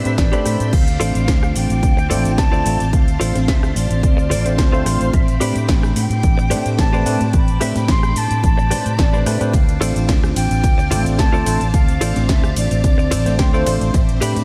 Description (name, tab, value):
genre	nu-disco, nu disco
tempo	109 BPM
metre	4/4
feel	straight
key	D dorian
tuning	A4 = 439 Hz
part	mellow concert flute	melody	0.0-14.4 s	C5 to C6	-28 LUFS	equal	tape echo
part	bell-like tine electric piano	accompaniment	0.0-14.4 s	A3 to B5	-26 LUFS	equal	lush chorus
part	string machine, full ensemble	sustained chords	0.0-14.4 s	C4 to E6	-30 LUFS	equal	ensemble chorus, vintage 12-bit sampler grit, sidechain pumping
part	direct-recorded clean electric guitar	riff	0.0-14.4 s	F4 to A5	-29 LUFS	equal	subtle chorus
part	fingered electric bass	bass	0.0-14.4 s	A1 to A2	-22 LUFS	equal	sidechain pumping
part	house drum kit	drums	0.1-14.4 s	cabasa, crash cymbal, hi-hat, ride cymbal, rim click, snare drum	-29 LUFS	equal	small room ambience
part	electronic kick drum	drums	0.2-14.1 s	none	-18 LUFS	equal	small room ambience
room	light reverb, digital ambience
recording	none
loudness	-17 LUFS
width	mono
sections	0.0-14.4 A section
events	clean electric guitar fill 8.7-9.5, 13.1-13.9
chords	0.0 Am11; 0.7 Dm7; 5.1 Am11; 9.5 Dm7; 13.9 Am11